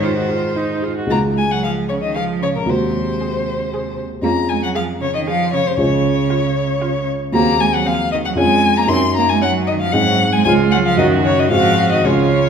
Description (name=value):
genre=quick classical-period movement for piano quartet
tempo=115 BPM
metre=3/4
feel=straight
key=Db major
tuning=A4 = 440 Hz
part: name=rich violin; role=melody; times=0.0-12.5 s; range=Bb4 to C6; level=-19 LUFS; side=left 4 dB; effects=none
part: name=rich cello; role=second line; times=0.0-12.5 s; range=Bb2 to C4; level=-21 LUFS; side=right 5 dB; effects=none
part: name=dark grand piano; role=accompaniment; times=0.0-12.5 s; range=Db2 to Bb4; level=-19 LUFS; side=equal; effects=none
part: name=warm viola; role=accompaniment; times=0.0-12.5 s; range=C4 to Ab4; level=-24 LUFS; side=right 3 dB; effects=none
room=wet recital hall reverb, RT60 1.7 s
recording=recorded in a church or concert hall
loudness=-14 LUFS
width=side -7 dB against mid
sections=0.0-1.1 A section; 1.1-12.5 B section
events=none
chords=0.0 Ab; 1.1 Db; 2.7 Ab7/Eb; 4.2 Db/F; 5.8 Db; 7.3 Ab7/Eb; 8.4 Db/F; 8.9 Ebm7/Gb; 9.9 Ab7; 10.5 Db; 11.0 Gb; 11.5 Ab7